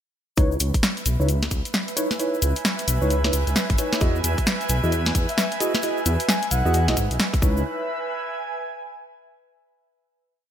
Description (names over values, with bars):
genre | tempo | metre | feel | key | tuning
UK garage, two-step garage | 132 BPM | 4/4 | swing 62% on 16ths | unclear | A4 = 441 Hz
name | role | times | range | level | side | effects
mellow tine electric piano | stabs | 0.4-7.6 s | D#4 to D#5 | -28 LUFS | right 1 dB | lush chorus, digital delay
dark detuned saw bass | bass | 0.4-7.6 s | G#1 to G#2 | -22 LUFS | equal | tube saturation, sidechain pumping
electronic kick drum | drums | 0.4-7.5 s | none | -22 LUFS | equal | none
punchy analog drum machine | drums | 0.4-7.4 s | hi-hat, snare drum | -24 LUFS | equal | none
cabasa | percussion | 0.4-7.6 s | none | -33 LUFS | left 5 dB | none
airy breathy pad | texture | 0.4-9.4 s | B4 to G#5 | -29 LUFS | right 2 dB | chorus, sidechain pumping
breathy flute-like synth lead | melody | 5.3-7.0 s | E5 to G#5 | -29 LUFS | left 2 dB | chorus, digital delay
room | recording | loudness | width
light reverb, digital ambience | bright 1980s-style digital production | -20 LUFS | side -10 dB against mid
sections
0.4-7.6 drop; 7.6-9.5 final note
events
drop 0.4-7.6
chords
0.4 C#m9; 4.0 Emaj9; 7.4 C#m9; 7.6 E/B